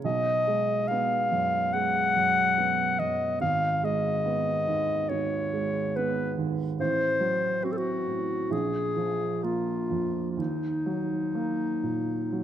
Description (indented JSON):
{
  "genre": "classical, romantic duo for clarinet and grand piano",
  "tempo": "61-72 BPM",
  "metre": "4/4",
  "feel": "rubato",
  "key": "Eb minor",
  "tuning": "A4 = 440 Hz",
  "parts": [
    { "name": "warm baby grand piano", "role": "accompaniment", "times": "0.0-12.4 s", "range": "Ab1 to C4", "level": "-29 LUFS", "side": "right 5 dB", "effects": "none" },
    { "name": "clear clarinet", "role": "melody", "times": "0.1-12.4 s", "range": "Eb4 to F#5", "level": "-26 LUFS", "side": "left 2 dB", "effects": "none" }
  ],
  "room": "moderate scoring stage reverb, RT60 1.6 s",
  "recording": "close, detailed microphones",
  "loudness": "-25 LUFS",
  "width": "side -10 dB against mid",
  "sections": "0.0-12.4 A section",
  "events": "none",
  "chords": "0.0 B6; 3.4 Abmadd11; 6.8 Am6; 8.5 Bb5; 10.4 Ebm"
}